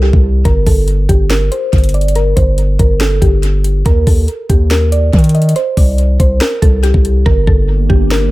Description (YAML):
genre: hip hop, trap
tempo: 141 BPM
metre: 4/4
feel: half-time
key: G minor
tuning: A4 = 440 Hz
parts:
  - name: mallet-like synth pluck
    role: melody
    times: 0.0-8.3 s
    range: G4 to Eb5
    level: -18 LUFS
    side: equal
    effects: chorus, low-pass filter, tape echo
  - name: long sustained 808-style bass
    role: bass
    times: 0.0-8.3 s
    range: G1 to Eb3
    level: -12 LUFS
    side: equal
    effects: none
  - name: trap drum kit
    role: drums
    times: 0.1-8.2 s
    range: handclaps, hi-hat, kick drum, snare drum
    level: -12 LUFS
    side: equal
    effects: none
  - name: warbly tape-like pad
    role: sustained chords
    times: 7.5-8.3 s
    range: Bb3 to G4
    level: -21 LUFS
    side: right 3 dB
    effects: chorus, built-in reverb
room: digital ambience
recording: echo-heavy mix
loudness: -9 LUFS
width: side -18 dB against mid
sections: 0.0-8.3 A section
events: break 0.0-0.5; filter sweep on synth pluck 0.0-7.3; hi-hats muted 7.3-8.3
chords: 0.5 Gm; 3.9 Ebmaj7(no3); 5.6 C5; 7.3 Gm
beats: 0.03 | 0.45 0.88 1.30 1.73 | 2.15 2.58 3.00 3.43 | 3.86 4.28 4.71 5.13 | 5.56 5.98 6.41 6.83 | 7.26 7.69 8.11